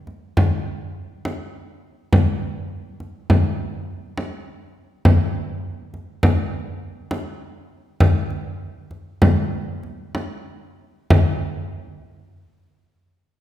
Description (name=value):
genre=contemporary instrumental, contemporary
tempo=100 BPM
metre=5/4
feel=uneven beats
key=none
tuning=none
part: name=frame drum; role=percussion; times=0.1-11.4 s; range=none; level=-18 LUFS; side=equal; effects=none
room=wet recital hall reverb, RT60 1.7 s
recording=recorded in a church or concert hall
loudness=-19 LUFS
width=side -12 dB against mid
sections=0.0-11.1 A section; 11.1-13.4 B section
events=slowing down 6.2-11.1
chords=none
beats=0.36 0.95 1.54 | 2.12 2.71 3.29 3.88 4.46 | 5.05 5.64 6.22 6.81 7.40 | 8.00 8.60 9.21 9.83 10.46 | 11.10